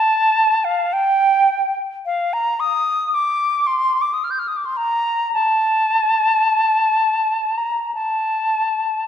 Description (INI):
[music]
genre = classical, free, expressive piece for unaccompanied flute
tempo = 40-56 BPM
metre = 4/4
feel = rubato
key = unclear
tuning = A4 = 439 Hz
[part]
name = mellow concert flute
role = solo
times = 0.0-9.0 s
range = F5 to G6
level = -16 LUFS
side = equal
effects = none
[sound]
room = wet scoring stage reverb, RT60 1.7 s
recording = dark, warm production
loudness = -16 LUFS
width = side -9 dB against mid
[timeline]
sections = 0.0-9.1 A section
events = none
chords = none